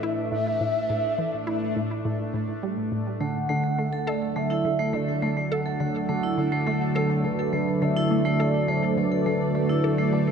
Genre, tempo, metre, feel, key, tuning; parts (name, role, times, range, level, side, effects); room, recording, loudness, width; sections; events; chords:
ambient, sequencer-driven space music; 104 BPM; 4/4; straight; A4 = 440 Hz
expressive portamento lead; melody; 0.0-10.3 s; A4 to F#5; -29 LUFS; equal; wide subtle chorus, tape echo
sweeping resonant pad; sustained chords; 0.0-10.3 s; A2 to E5; -26 LUFS; right 1 dB; chorus
resonant blip pluck; riff; 0.0-10.3 s; A2 to A4; -31 LUFS; left 1 dB; chorus, tape echo
bubbling stepped-filter texture; texture; 0.0-10.3 s; A3 to A4; -35 LUFS; right 1 dB; chorus, built-in reverb
vibraphone with hard mallets; arpeggios; 3.2-10.2 s; A3 to A4; -29 LUFS; right 2 dB; auto-pan, tape echo
wet plate reverb, RT60 2.9 s; dreamy mix soaked in reverb; -23 LUFS; side -6 dB against mid
0.0-10.3 A section
0.0 Asus2; 3.2 D